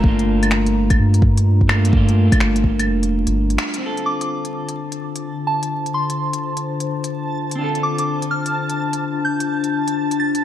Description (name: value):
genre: future garage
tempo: 127 BPM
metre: 4/4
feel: swing 65% on 16ths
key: D minor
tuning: A4 = 440 Hz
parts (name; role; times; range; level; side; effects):
- clean electric guitar; accompaniment; 0.0-10.4 s; A3 to A4; -22 LUFS; equal; sidechain pumping, ping-pong delay
- warbly tape-like pad; sustained chords; 0.0-10.4 s; D3 to Bb5; -24 LUFS; left 4 dB; chorus, built-in reverb, sidechain pumping
- soft dub sub bass; bass; 0.0-3.6 s; F1 to G2; -17 LUFS; equal; sidechain pumping
- electronic kick drum; drums; 0.0-2.8 s; none; -17 LUFS; equal; none
- organic electronic drum kit; drums; 0.2-10.4 s; claves, finger snaps, hi-hat; -25 LUFS; left 1 dB; none
- backwards swelling texture; texture; 4.6-10.4 s; A5; -29 LUFS; right 3 dB; built-in reverb
- soft synth bell; melody; 4.1-10.4 s; A5 to A6; -24 LUFS; right 1 dB; chorus, dub echo
room: moderate lush hall reverb, RT60 1.9 s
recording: dark, warm production, vinyl crackle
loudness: -17 LUFS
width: side -11 dB against mid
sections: 0.0-3.8 A section; 3.8-10.4 B section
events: band accent 3.6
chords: 0.0 Gm7; 3.8 Dm7